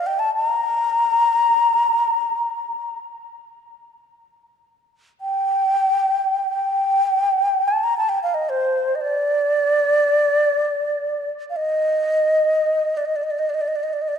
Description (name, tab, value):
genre	world meditative, free-time meditation music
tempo	free time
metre	none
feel	none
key	G minor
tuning	A4 = 439 Hz
part	hollow xiao	solo	0.0-14.2 s	C5 to Bb5	-18 LUFS	equal	diffuse ambient delay
room	wet concert hall reverb, RT60 2.2 s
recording	dark, warm production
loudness	-17 LUFS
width	side -7 dB against mid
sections	0.0-14.2 A section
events	none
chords	none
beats	free time